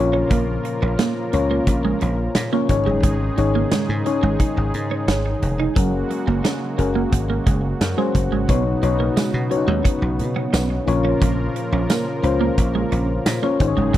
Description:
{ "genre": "1980s-style pop", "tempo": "88 BPM", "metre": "4/4", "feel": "straight", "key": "unclear", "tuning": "A4 = 440 Hz", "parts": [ { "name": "mellow FM electric piano", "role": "accompaniment", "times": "0.0-14.0 s", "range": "Ab2 to Db5", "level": "-23 LUFS", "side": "left 5 dB", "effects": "chorus" }, { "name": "brassy analog pad", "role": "sustained chords", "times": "0.0-14.0 s", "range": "Db3 to Bb4", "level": "-26 LUFS", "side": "right 2 dB", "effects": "chorus" }, { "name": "dry thumbed slap bass", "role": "bass", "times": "0.0-14.0 s", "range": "F1 to Cb3", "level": "-22 LUFS", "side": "equal", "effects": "none" }, { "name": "twelve-string electric guitar", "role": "riff", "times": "0.1-14.0 s", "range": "Gb3 to Eb4", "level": "-25 LUFS", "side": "right 6 dB", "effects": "analog chorus, slapback echo" }, { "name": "huge arena drum kit", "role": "drums", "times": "0.3-14.0 s", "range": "hi-hat, kick drum, snare drum", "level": "-22 LUFS", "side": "equal", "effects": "none" }, { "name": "tambourine", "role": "percussion", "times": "9.2-13.4 s", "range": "none", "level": "-36 LUFS", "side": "right 7 dB", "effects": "none" } ], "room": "little or no reverb", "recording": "dry, close 1970s-style studio recording", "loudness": "-18 LUFS", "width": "side -13 dB against mid", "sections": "0.0-14.0 A section", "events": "none", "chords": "0.0 Bbm; 2.7 Absus4; 5.8 Gbadd9; 8.5 Cbadd9; 10.9 Bbm", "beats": "| 0.31 0.99 1.67 2.35 | 3.04 3.72 4.40 5.08 | 5.76 6.44 7.13 7.81 | 8.49 9.17 9.85 10.54 | 11.22 11.90 12.58 13.26 | 13.94" }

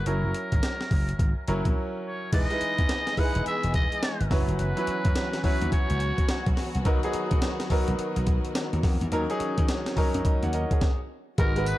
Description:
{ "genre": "R&B, new jack swing", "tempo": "106 BPM", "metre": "4/4", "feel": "swing 63% on 16ths", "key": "unclear", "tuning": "A4 = 440 Hz", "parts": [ { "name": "trumpet with metal mute", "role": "melody", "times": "0.0-6.5, 11.4-11.8 s", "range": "A#4 to F#5", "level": "-32 LUFS", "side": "equal", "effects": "tape echo" }, { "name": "bright concert grand piano", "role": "accompaniment", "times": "0.0-11.8 s", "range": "F#3 to A#5", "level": "-30 LUFS", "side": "equal", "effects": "none" }, { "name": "slap bass", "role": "bass", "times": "0.0-11.7 s", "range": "E1 to D#3", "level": "-28 LUFS", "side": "equal", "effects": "none" }, { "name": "breakbeat sampler-style drum kit", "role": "drums", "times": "0.1-11.8 s", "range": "crash cymbal, hi-hat, kick drum, snare drum, tambourine", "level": "-26 LUFS", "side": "equal", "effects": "none" }, { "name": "warm studio string section", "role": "sustained chords", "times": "2.3-11.8 s", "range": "D#3 to D#5", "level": "-35 LUFS", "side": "left 2 dB", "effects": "none" } ], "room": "small room ambience", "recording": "dark, warm production", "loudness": "-24 LUFS", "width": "side -16 dB against mid", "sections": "0.0-2.3 A section; 2.3-11.4 B section", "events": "break 1.8-2.3; stop 10.8-11.4", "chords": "0.1 F#7; 2.3 Emaj7; 4.3 F#7sus4; 6.9 Bmaj7; 9.1 D#m7", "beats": "| 0.06 0.63 1.19 1.76 | 2.33 2.89 3.46 4.02 | 4.59 5.16 5.72 6.29 | 6.85 7.42 7.99 8.55 | 9.12 9.68 10.25 10.82 | 11.38" }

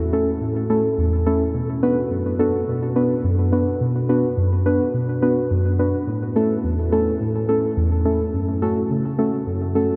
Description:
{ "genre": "pop", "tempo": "106 BPM", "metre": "4/4", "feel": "straight", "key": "B minor", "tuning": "A4 = 440 Hz", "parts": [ { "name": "muted felt-like synth keys", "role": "solo", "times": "0.0-9.9 s", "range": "E2 to B4", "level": "-20 LUFS", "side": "equal", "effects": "chorus, delay" } ], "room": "wet huge ambient reverb, RT60 8.5 s", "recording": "dreamy mix soaked in reverb", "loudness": "-21 LUFS", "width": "mono", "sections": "0.0-10.0 A section", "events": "none", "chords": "0.0 A; 1.5 Bm; 6.1 A; 8.3 F#m", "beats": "0.41 0.98 | 1.54 2.11 2.68 3.24 | 3.81 4.37 4.94 5.51 | 6.07 6.64 7.21 7.77 | 8.34 8.90 9.47" }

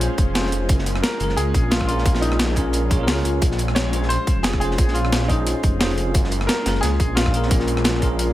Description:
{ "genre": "liquid drum and bass", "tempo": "176 BPM", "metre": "4/4", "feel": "swing 53% on 16ths", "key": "unclear", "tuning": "A4 = 441 Hz", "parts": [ { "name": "warm concert grand piano", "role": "melody", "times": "0.0-8.3 s", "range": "Bb3 to Db5", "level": "-27 LUFS", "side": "left 1 dB", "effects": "dub echo" }, { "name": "bell-like tine electric piano", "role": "accompaniment", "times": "0.0-8.3 s", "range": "Db4 to Db5", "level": "-27 LUFS", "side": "equal", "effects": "medium stereo tremolo" }, { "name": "shimmering ambient pad", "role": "sustained chords", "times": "0.0-8.3 s", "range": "Ab3 to C6", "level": "-30 LUFS", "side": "left 1 dB", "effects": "chorus, built-in reverb, sidechain pumping" }, { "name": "swelling detuned saw bass", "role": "bass", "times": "0.0-8.3 s", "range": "F1 to Db2", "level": "-22 LUFS", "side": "equal", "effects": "none" }, { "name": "breakbeat sampler-style drum kit", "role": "drums", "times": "0.0-8.3 s", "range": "hi-hat, rim click, snare drum", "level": "-24 LUFS", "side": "equal", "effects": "overdrive" }, { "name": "crunchy breakbeat drum kit", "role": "drums", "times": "0.0-8.3 s", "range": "hi-hat, snare drum", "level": "-31 LUFS", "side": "equal", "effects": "high-pass filter on hats, high-pass filter on snare, high-pass filter on room" }, { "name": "electronic kick drum", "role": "drums", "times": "0.2-8.1 s", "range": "none", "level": "-19 LUFS", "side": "equal", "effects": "none" } ], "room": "studio ambience", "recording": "none", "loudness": "-17 LUFS", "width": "side -14 dB against mid", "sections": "0.0-8.3 A section", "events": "none", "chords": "0.0 Bbm9; 0.7 Gbmaj9; 3.4 Bbm9; 6.1 Gbmaj9", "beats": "0.01 0.35 | 0.69 1.03 1.37 1.72 | 2.06 2.40 2.74 3.08 | 3.42 3.76 4.10 4.44 | 4.78 5.12 5.46 5.81 | 6.15 6.49 6.83 7.17 | 7.51 7.85 8.19" }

